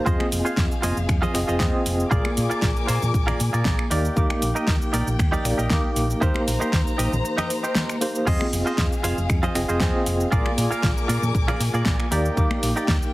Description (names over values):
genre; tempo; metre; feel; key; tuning
nu-disco, nu disco; 117 BPM; 4/4; straight; F dorian; A4 = 439 Hz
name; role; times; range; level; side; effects
tine electric piano; accompaniment; 0.0-13.1 s; Bb3 to D6; -26 LUFS; equal; medium tremolo, sidechain pumping, dub echo
dark studio string section; sustained chords; 0.0-13.1 s; Ab4 to D6; -33 LUFS; left 4 dB; sidechain pumping
direct-recorded clean electric guitar; riff; 0.1-13.0 s; Eb4 to F5; -28 LUFS; right 2 dB; lush chorus, dub echo
hollow-body short-scale fingered electric bass; bass; 0.1-13.0 s; F1 to Bb2; -25 LUFS; equal; none
electronic kick drum; drums; 0.1-13.0 s; none; -24 LUFS; equal; none
pop drum kit; drums; 0.1-13.1 s; crash cymbal, finger snaps, hi-hat, shaker, snare drum; -28 LUFS; equal; none
cabasa and congas; percussion; 0.1-13.0 s; none; -34 LUFS; left 1 dB; none
room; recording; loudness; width
little or no reverb; heavily compressed radio sound, multiband compression; -20 LUFS; side -18 dB against mid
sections
0.0-13.1 A section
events
break 7.2-8.3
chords
0.1 Fm7; 2.1 Bb7; 3.9 Ebmaj7; 6.2 Cm7; 8.3 Fm7; 10.3 Bb7; 12.1 Ebmaj7